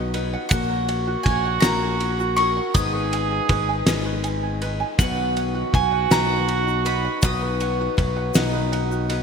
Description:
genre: indie folk with a building arrangement.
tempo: 54 BPM (dotted quarters).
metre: 6/8.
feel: straight.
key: unclear.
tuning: A4 = 440 Hz.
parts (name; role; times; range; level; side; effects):
mandolin; melody; 0.0-8.0 s; D#5 to D#6; -26 LUFS; right 1 dB; ping-pong delay.
French horn with straight mute; second line; 0.0-9.2 s; D#4 to G#4; -27 LUFS; right 7 dB; none.
picked steel-string acoustic guitar; accompaniment; 0.0-9.2 s; G#2 to B4; -28 LUFS; left 11 dB; none.
tenor ukulele; arpeggios; 0.0-9.2 s; F#4 to G#5; -31 LUFS; right 6 dB; none.
picked electric bass; bass; 0.0-9.2 s; G#1 to B1; -26 LUFS; equal; none.
loose indie drum kit; drums; 0.1-9.2 s; kick drum, ride cymbal, snare drum; -24 LUFS; equal; gated reverb.
egg shaker; percussion; 0.5-9.0 s; none; -37 LUFS; left 15 dB; none.
room: moderate lush hall reverb, RT60 2.6 s.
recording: bright 1980s-style digital production.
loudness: -19 LUFS.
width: side -6 dB against mid.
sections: 0.0-9.2 A section.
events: none.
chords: 0.0 B; 0.5 F#/A#; 2.8 G#m; 5.0 B.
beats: | 0.51 1.63 | 2.75 3.87 | 4.99 6.11 | 7.23 8.35.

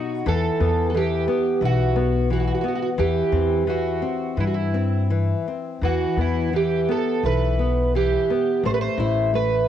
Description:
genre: fado-style ballad.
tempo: 87 BPM.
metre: 4/4.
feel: rubato.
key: E minor.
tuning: A4 = 440 Hz.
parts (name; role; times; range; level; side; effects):
fingerpicked twelve-string acoustic guitar; melody; 0.0-9.7 s; E4 to C5; -23 LUFS; right 6 dB; cassette tape.
nylon-string guitar; accompaniment; 0.0-9.7 s; B2 to E4; -25 LUFS; left 7 dB; none.
upright bass; bass; 0.3-9.6 s; A1 to G2; -23 LUFS; left 1 dB; tube saturation.
room: light reverb, small room ambience.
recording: home recording on cassette.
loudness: -19 LUFS.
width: side -10 dB against mid.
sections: 0.0-9.7 A section.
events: none.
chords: 0.3 Emadd9; 3.0 C/E; 5.8 Em; 8.6 A5.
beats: | 0.26 0.94 1.61 2.29 | 2.98 3.67 4.37 5.10 | 5.82 6.53 7.23 7.94 | 8.64 9.32.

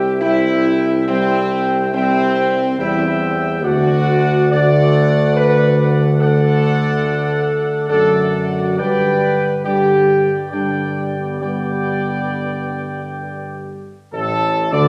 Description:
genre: classical, ceremonial fanfare.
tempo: 70 BPM.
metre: 3/4.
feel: straight.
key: unclear.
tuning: A4 = 440 Hz.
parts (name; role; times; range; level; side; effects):
warm trumpet section; melody; 0.0-14.9 s; A4 to G5; -25 LUFS; equal; none.
warm French horn section; sustained chords; 0.0-14.9 s; A3 to D5; -20 LUFS; equal; none.
warm trombone section; sustained chords; 0.0-14.9 s; A2 to C4; -24 LUFS; equal; none.
clear tuba; bass; 0.0-14.9 s; A1 to G2; -22 LUFS; equal; none.
room: wet recital hall reverb, RT60 1.5 s.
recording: heard from further back in the room.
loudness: -16 LUFS.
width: mono.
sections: 0.0-14.1 A section.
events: none.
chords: 0.0 C; 3.6 D; 8.8 G; 14.1 D5/A.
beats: 0.22 | 1.08 1.93 2.79 | 3.64 4.52 5.37 | 6.21 7.05 7.90 | 8.79 9.65 10.52 | 11.41 12.32 13.22 | 14.14.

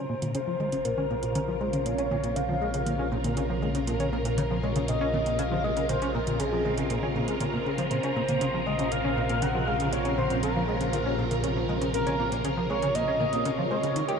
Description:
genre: ambient, sequencer-driven space music.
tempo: 119 BPM.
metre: 4/4.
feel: straight.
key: Bb minor.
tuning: A4 = 443 Hz.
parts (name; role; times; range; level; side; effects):
pulse-width lead; melody; 0.0-14.2 s; Ab4 to Gb5; -30 LUFS; equal; chorus, tape echo.
phased string machine; sustained chords; 0.0-14.2 s; C3 to Bb4; -31 LUFS; equal; ensemble chorus, phaser.
plucky analog bass; riff; 0.0-14.2 s; Bb2 to G4; -31 LUFS; equal; lush chorus, tape echo.
analog drone; bass; 0.8-14.2 s; Bb1 to Eb2; -34 LUFS; equal; chorus.
soft vintage rhythm box; percussion; 0.2-14.2 s; hi-hat, toms; -36 LUFS; equal; tape echo.
room: wet huge ambient reverb, RT60 7.5 s.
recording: in a vast, echoing space, cassette tape.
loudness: -25 LUFS.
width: side -6 dB against mid.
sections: 0.0-14.2 A section.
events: filter sweep on analog synth bass 0.0-14.2.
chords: 0.0 Bbmadd9.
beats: 0.35 0.85 1.35 | 1.86 2.36 2.87 3.37 | 3.88 4.38 4.88 5.39 | 5.89 6.40 6.90 7.41 | 7.91 8.41 8.92 9.42 | 9.93 10.43 10.93 11.44 | 11.94 12.45 12.95 13.46 | 13.96.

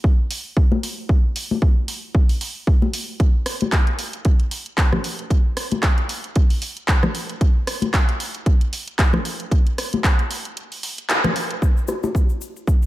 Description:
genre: nu-disco.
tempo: 114 BPM.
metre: 4/4.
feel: swing 56% on 16ths.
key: none.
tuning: none.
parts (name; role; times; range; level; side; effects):
electronic kick drum; drums; 0.0-12.8 s; none; -16 LUFS; equal; overdrive.
house drum kit; drums; 0.3-12.9 s; handclaps, hi-hat, rim click; -24 LUFS; equal; overdrive, low-pass filter on hats, low-pass filter on snare, low-pass filter on room.
congas, cabasa and bongos; percussion; 0.7-12.9 s; none; -26 LUFS; left 3 dB; none.
room: light reverb.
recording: none.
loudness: -18 LUFS.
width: side -16 dB against mid.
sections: 0.0-11.6 A section; 11.6-12.9 B section.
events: break 10.6-11.6; band accent 11.1; filter sweep on drum 11.6-12.9.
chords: none.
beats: 0.05 0.57 | 1.10 1.62 2.15 2.68 | 3.20 3.73 4.26 4.78 | 5.31 5.84 6.36 6.89 | 7.42 7.94 8.47 8.99 | 9.52 10.05 10.57 11.10 | 11.62 12.15 12.68.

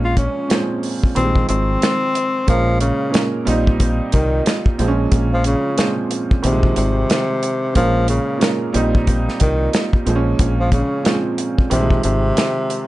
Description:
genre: hip hop, boom-bap hip-hop.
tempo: 91 BPM.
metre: 4/4.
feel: swing 60% on 16ths.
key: Bb dorian.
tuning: A4 = 440 Hz.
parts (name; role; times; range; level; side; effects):
breathy tenor saxophone; melody; 0.0-12.9 s; C3 to F4; -20 LUFS; left 1 dB; none.
warm upright piano; accompaniment; 0.0-12.9 s; Bb2 to Bb4; -21 LUFS; right 3 dB; none.
deep dub fingered electric bass; bass; 0.0-12.3 s; Ab1 to C2; -19 LUFS; equal; none.
warm soul drum kit; drums; 0.2-12.9 s; hi-hat, kick drum, snare drum; -18 LUFS; equal; none.
room: light reverb.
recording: nothing above 10.8 kHz.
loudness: -15 LUFS.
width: side -16 dB against mid.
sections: 0.0-2.5 A section; 2.5-12.9 B section.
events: none.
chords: 0.0 Bbm7; 1.2 Fm7; 2.5 Bbm7; 3.5 Cm/Bb; 4.8 Bbm7; 6.4 Fm7; 7.8 Bbm7; 8.7 Cm/Bb; 10.1 Bbm7; 11.7 Fm7.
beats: 0.51 1.16 1.82 | 2.48 3.14 3.80 4.46 | 5.12 5.78 6.44 7.10 | 7.76 8.42 9.08 9.74 | 10.39 11.05 11.71 12.37.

